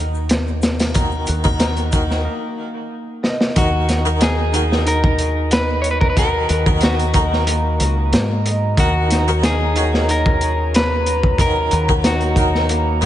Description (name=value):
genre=trip hop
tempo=92 BPM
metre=4/4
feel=swing 53% on 16ths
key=Eb minor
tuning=A4 = 440 Hz
part: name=harpsichord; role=accompaniment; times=0.0-13.1 s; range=Eb3 to Db5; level=-24 LUFS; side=equal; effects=tremolo, vintage 12-bit sampler grit, tape echo
part: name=concert harp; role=arpeggios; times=0.0-13.1 s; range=Bb3 to Eb5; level=-28 LUFS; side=equal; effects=tape echo
part: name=deep dub fingered electric bass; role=bass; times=0.0-13.1 s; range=Db2 to Ab2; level=-20 LUFS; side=equal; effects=none
part: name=egg shaker and triangle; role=percussion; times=0.1-2.2 s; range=none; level=-36 LUFS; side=left 5 dB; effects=none
part: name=crunchy breakbeat drum kit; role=drums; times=0.3-13.1 s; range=hi-hat, kick drum, snare drum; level=-19 LUFS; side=equal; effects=none
part: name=clean electric guitar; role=melody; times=3.6-13.1 s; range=Gb4 to Db5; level=-21 LUFS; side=equal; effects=tape echo
part: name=dark analog pad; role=sustained chords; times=3.6-13.1 s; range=Gb4 to Bb5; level=-28 LUFS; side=equal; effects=chorus
room=moderate lush hall reverb, RT60 2.5 s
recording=dreamy mix soaked in reverb, nothing above 10.4 kHz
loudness=-15 LUFS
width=side -12 dB against mid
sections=0.0-3.6 A section; 3.6-13.1 B section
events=break 2.3-3.6; drum fill 3.2-3.6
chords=0.0 Ebm; 8.8 Gb/Eb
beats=0.30 | 0.95 1.60 2.26 2.91 | 3.56 4.21 4.87 5.52 | 6.17 6.82 7.47 8.13 | 8.78 9.43 10.08 10.73 | 11.39 12.04 12.69